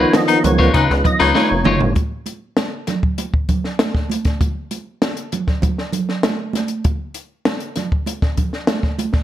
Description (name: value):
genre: funk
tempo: 98 BPM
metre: 4/4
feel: straight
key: unclear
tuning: A4 = 439 Hz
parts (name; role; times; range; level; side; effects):
- electric guitar at the edge of break-up; accompaniment; 0.0-1.8 s; Eb4 to Db5; -20 LUFS; left 4 dB; none
- mellow tonewheel organ; sustained chords; 0.0-1.9 s; Eb3 to F4; -25 LUFS; left 2 dB; none
- percussive tonewheel organ; stabs; 0.0-1.9 s; Eb3 to Eb5; -18 LUFS; right 2 dB; chorus vibrato, slow rotary speaker
- rubbery square bass; bass; 0.0-1.9 s; F1 to Db3; -19 LUFS; equal; none
- compact cocktail drum kit; drums; 0.1-9.2 s; hi-hat, kick drum, snare drum, toms; -19 LUFS; equal; none
- congas; percussion; 0.1-9.1 s; none; -24 LUFS; right 5 dB; none
- warm baritone saxophone; second line; 0.3-1.6 s; Eb4; -19 LUFS; left 8 dB; none
room: light reverb, small room reverb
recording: none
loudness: -16 LUFS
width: side -12 dB against mid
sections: 0.0-2.0 A section; 2.0-9.2 B section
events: band accent 0.0-2.0; tonewheel organ solo 0.0-2.0; drum fill 1.4-2.0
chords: 0.0 Db9; 2.0 N.C.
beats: 0.15 0.75 1.36 | 1.97 2.58 3.19 3.80 | 4.41 5.02 5.63 6.24 | 6.85 7.46 8.07 8.68